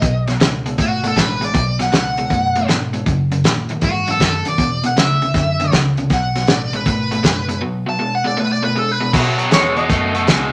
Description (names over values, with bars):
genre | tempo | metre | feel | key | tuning
electric blues shuffle | 158 BPM | 4/4 | swing 66% on 8ths | unclear | A4 = 439 Hz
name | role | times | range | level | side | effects
smooth overdriven lead guitar | melody | 0.0-9.1 s | F#4 to A5 | -22 LUFS | equal | none
crunchy overdriven guitar | riff | 0.0-10.5 s | E2 to A3 | -22 LUFS | equal | none
vintage muted fingered electric bass | bass | 0.0-10.5 s | F#1 to B2 | -28 LUFS | equal | none
warm soul drum kit | drums | 0.0-10.4 s | crash cymbal, hi-hat, kick drum, snare drum | -20 LUFS | equal | none
electric guitar at the edge of break-up | second line | 9.5-10.5 s | C#5 to D#5 | -22 LUFS | equal | harmonic tremolo
room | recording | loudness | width
moderate studio reverb, RT60 0.8 s | none | -17 LUFS | mono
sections
0.0-9.1 A section; 9.1-10.5 B section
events
clean electric guitar solo 9.1-10.5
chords
0.0 B7sus2; 3.1 F#13; 4.6 Esus2; 6.1 B5; 9.1 B13